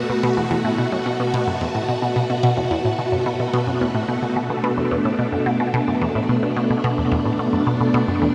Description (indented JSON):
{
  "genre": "ambient, sequencer-driven space music",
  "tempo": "109 BPM",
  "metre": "4/4",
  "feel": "straight",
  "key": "B minor",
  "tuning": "A4 = 440 Hz",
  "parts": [
    { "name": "phased string machine", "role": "sustained chords", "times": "0.0-8.3 s", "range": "B2 to F#4", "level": "-23 LUFS", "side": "equal", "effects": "ensemble chorus, phaser, shimmer reverb" },
    { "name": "resonant blip pluck", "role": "riff", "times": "0.0-8.3 s", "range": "E2 to B2", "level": "-24 LUFS", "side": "equal", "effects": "phaser, analog delay, shimmer reverb" }
  ],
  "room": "wet huge ambient reverb, RT60 7.3 s",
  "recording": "none",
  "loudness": "-21 LUFS",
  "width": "mono",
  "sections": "0.0-8.3 A section",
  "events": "none",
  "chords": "0.0 Bm7",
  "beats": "0.51 1.06 1.61 | 2.16 2.71 3.26 3.81 | 4.36 4.92 5.46 6.02 | 6.57 7.12 7.67 8.22"
}